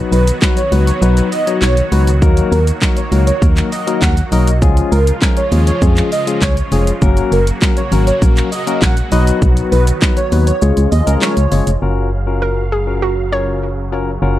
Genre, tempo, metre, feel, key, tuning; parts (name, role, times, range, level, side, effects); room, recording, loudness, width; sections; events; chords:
dance-pop; 100 BPM; 4/4; straight; F# major; A4 = 440 Hz
barky tine electric piano; accompaniment; 0.0-14.4 s; E#3 to C#5; -19 LUFS; left 6 dB; sidechain pumping
filtered supersaw swell; sustained chords; 0.0-14.4 s; C#3 to E#5; -24 LUFS; right 2 dB; sidechain pumping
airy dreamy lead; melody; 0.1-11.6 s; A#4 to F#5; -20 LUFS; right 2 dB; chorus, digital delay
organ-like FM bass; bass; 0.1-14.4 s; E#1 to E#2; -14 LUFS; equal; sidechain pumping
pop drum kit; drums; 0.1-11.8 s; handclaps, hi-hat, kick drum, shaker, snare drum; -15 LUFS; equal
hollow square pluck; melody; 12.4-13.9 s; F#4 to C#5; -20 LUFS; right 2 dB; chorus, digital delay
digital ambience; dark, warm production; -11 LUFS; side -14 dB against mid
0.0-11.8 A section; 11.8-14.4 B section
drop 0.0-11.8; kick muted 1.0-2.2, 10.6-11.8
0.0 B; 2.2 D#m; 4.6 C#; 7.0 F#; 9.1 B; 10.6 C#; 11.8 F#maj7